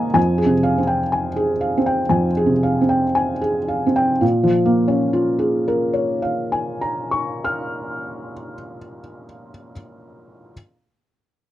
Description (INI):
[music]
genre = neoclassical minimalist piano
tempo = 55-64 BPM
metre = 4/4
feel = rubato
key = Bb dorian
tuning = A4 = 440 Hz
[part]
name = felt-muted upright piano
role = solo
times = 0.0-10.5 s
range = F2 to F6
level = -17 LUFS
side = equal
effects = none
[sound]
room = light reverb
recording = dry, close 1970s-style studio recording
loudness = -17 LUFS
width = side -13 dB against mid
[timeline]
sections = 0.0-4.2 A section; 4.2-8.3 B section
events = slowing down 0.0-4.2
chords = 0.2 Fmadd9; 4.2 Bbm7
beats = | 0.16 1.12 2.11 3.16 | 4.22 5.23 6.25 7.25